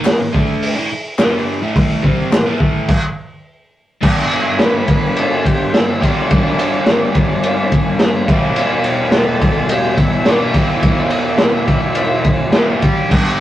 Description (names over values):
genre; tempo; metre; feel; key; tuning
garage rock duo or trio; 106 BPM; 4/4; straight; E minor; A4 = 436 Hz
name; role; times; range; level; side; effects
crunchy overdriven guitar; riff; 0.0-13.4 s; E2 to G4; -19 LUFS; equal; none
group handclap; percussion; 0.0-2.5 s; none; -28 LUFS; left 3 dB; none
raw garage drum kit; drums; 0.1-13.2 s; crash cymbal, hi-hat, kick drum, ride cymbal, snare drum; -14 LUFS; equal; none
overdriven combo organ; melody; 4.6-12.2 s; D4 to B4; -24 LUFS; left 1 dB; none
room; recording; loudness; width
moderate studio reverb, RT60 0.6 s; rough rehearsal-room recording, tube saturation, cassette tape; -12 LUFS; side -13 dB against mid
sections
0.0-4.0 A section; 4.0-13.4 B section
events
stop 2.9-4.0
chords
0.0 A5; 4.0 G; 8.3 Em